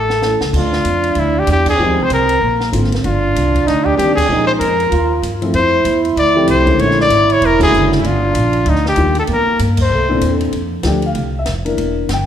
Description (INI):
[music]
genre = jazz, small-group swing and bop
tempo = 192 BPM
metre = 4/4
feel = swing 61% on 8ths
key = unclear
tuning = A4 = 440 Hz
[part]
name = breathy trumpet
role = melody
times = 0.0-10.4 s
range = Eb4 to D5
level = -16 LUFS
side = left 2 dB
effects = none
[part]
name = breathy trombone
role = second line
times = 0.0-10.4 s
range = A3 to F4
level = -19 LUFS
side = right 4 dB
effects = none
[part]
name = upright bass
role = bass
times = 0.0-12.3 s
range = E1 to Bb2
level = -18 LUFS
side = equal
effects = none
[part]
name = compact cocktail drum kit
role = drums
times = 0.1-12.2 s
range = crash cymbal, hi-hat, kick drum, ride cymbal, snare drum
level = -25 LUFS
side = right 1 dB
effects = none
[part]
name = dark concert grand piano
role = accompaniment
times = 0.2-12.3 s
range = Bb2 to G5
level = -20 LUFS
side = left 2 dB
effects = none
[sound]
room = wet recital hall reverb, RT60 1.8 s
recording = recorded in a church or concert hall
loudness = -12 LUFS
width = side -9 dB against mid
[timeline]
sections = 0.5-10.5 A section; 10.5-12.3 B section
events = drum fill 0.0-0.5; band accent 1.6, 4.1, 7.6, 9.7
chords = 0.0 A; 0.5 Dmadd9; 1.8 Fm11; 2.4 Bb9; 3.0 Eb6; 4.3 Bbm7; 4.9 Ebadd9; 5.5 Fmaj9; 6.8 Bb7alt; 8.0 Ebmaj9; 9.3 Edim; 9.9 C13; 10.5 F69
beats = 0.23 | 0.54 0.85 1.17 1.48 | 1.79 2.10 2.42 2.73 | 3.04 3.35 3.66 3.98 | 4.29 4.60 4.91 5.22 | 5.54 5.85 6.16 6.47 | 6.78 7.09 7.41 7.72 | 8.03 8.34 8.65 8.97 | 9.28 9.59 9.90 10.21 | 10.53 10.84 11.15 11.46 | 11.78 12.09